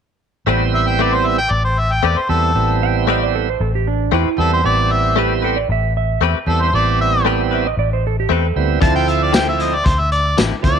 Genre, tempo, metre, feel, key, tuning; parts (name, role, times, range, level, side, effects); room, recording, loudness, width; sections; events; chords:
straight-eighth soul blues; 115 BPM; 4/4; straight; A minor; A4 = 437 Hz
bright tonewheel organ; accompaniment; 0.5-10.8 s; F3 to E4; -20 LUFS; right 13 dB; slow rotary speaker, overdrive
direct-recorded clean electric guitar; stabs; 0.5-10.5 s; D3 to B4; -22 LUFS; left 13 dB; lush chorus
vintage muted fingered electric bass; bass; 0.5-10.8 s; A1 to E2; -19 LUFS; left 1 dB
warm harmonica; melody; 0.7-10.8 s; A4 to A5; -18 LUFS; left 1 dB; overdrive
clean lap steel guitar; second line; 2.8-8.7 s; D4 to G5; -22 LUFS; right 12 dB
crunchy breakbeat drum kit; drums; 8.8-10.8 s; hi-hat, kick drum, snare drum, tambourine; -18 LUFS; left 1 dB
light reverb, studio reverb; 1960s-style stereo with parts hard left and right; -14 LUFS; side -7 dB against mid
0.5-10.8 A section
0.5 Am9; 8.8 Dm9